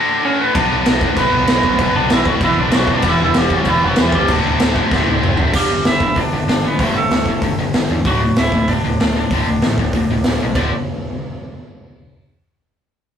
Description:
punk rock; 192 BPM; 4/4; straight; D major; A4 = 445 Hz
lightly driven lead guitar; melody; 0.0-10.7 s; E3 to E5; -19 LUFS; right 1 dB
tight distorted guitar; riff; 0.0-10.7 s; D2 to B4; -18 LUFS; left 1 dB; distortion
raw garage drum kit; drums; 0.5-10.6 s; crash cymbal, hi-hat, kick drum, snare drum, toms; -18 LUFS; equal
growling picked electric bass; bass; 0.6-10.7 s; D1 to E2; -22 LUFS; right 1 dB; overdrive
moderate studio reverb, RT60 0.6 s; rough rehearsal-room recording, warm saturation; -13 LUFS; side -8 dB against mid
0.0-5.5 A section; 5.5-10.6 B section; 10.6-11.8 C section
drum fill 4.9-5.5
0.0 D; 0.6 Bm; 3.0 Em; 4.3 D; 5.5 G5; 8.0 D

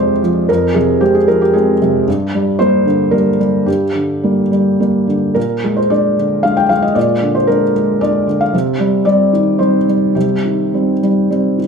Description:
neoclassical minimalist piano; 103-117 BPM; 3/4; rubato; F dorian; A4 = 440 Hz
felt-muted upright piano; solo; 0.0-11.7 s; F2 to G5; -12 LUFS; equal; slapback echo
moderate stone room reverb, RT60 1.3 s; close, detailed microphones; -11 LUFS; side -6 dB against mid
0.0-11.7 A section
0.0 Fm; 2.1 Gm; 5.4 Bb7; 8.5 Cm

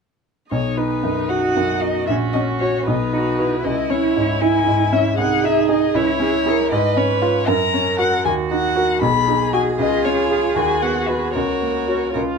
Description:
quick classical-period movement for piano quartet; 78 BPM (dotted quarters); 6/8; straight; B major, F# major from 6.7 s; A4 = 439 Hz
warm violin; melody; 0.5-12.1 s; B4 to B5; -22 LUFS; left 7 dB
bright baby grand piano; accompaniment; 0.5-12.4 s; A#1 to C#5; -20 LUFS; right 1 dB
rich viola; accompaniment; 0.5-12.4 s; D#4 to G#4; -25 LUFS; right 3 dB
rich cello; second line; 1.3-12.2 s; C#4 to B4; -23 LUFS; right 4 dB
light reverb; minimal, uncompressed stereo recording; -16 LUFS; side -5 dB against mid
0.5-12.4 A section
0.5 B; 2.1 F#/A#; 2.9 B; 3.6 C#m; 5.2 G#/B#; 6.0 C#m; 6.7 C#7/G#; 7.5 F#; 8.3 D#m; 9.0 G#m7/B; 9.8 C#; 10.6 B/D#; 11.4 F#/C#

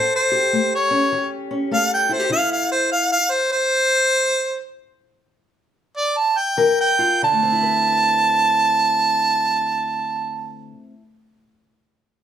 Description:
acoustic country blues, solo or duo; 91-102 BPM; 4/4; swing 63% on 8ths; A4 = 440 Hz
clear harmonica; melody; 0.0-10.6 s; C5 to A5; -17 LUFS; right 2 dB
fingerpicked steel-string acoustic guitar; accompaniment; 0.0-11.1 s; A2 to B4; -24 LUFS; left 3 dB
light reverb; band playing live in one room; -16 LUFS; side -9 dB against mid
0.0-7.2 A section; 7.2-9.9 B section
slowing down 2.3-7.2
0.0 A7; 2.3 Dsus2; 6.6 Ebadd9; 7.2 Dsus2

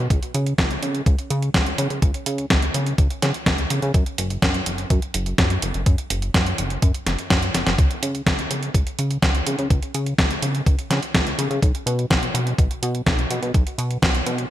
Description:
italo disco; 125 BPM; 4/4; straight; A4 = 441 Hz
chorused synth bass; bass; 0.0-14.5 s; F#1 to C#3; -24 LUFS; equal; digital delay
clean 12-bit digital drum machine; drums; 0.1-14.5 s; hi-hat, snare drum; -22 LUFS; equal; gated reverb
electronic kick drum; drums; 0.1-14.1 s; -20 LUFS; equal
light reverb; bright 1980s-style digital production; -19 LUFS; side -13 dB against mid
0.0-14.5 A section
drum fill 7.5

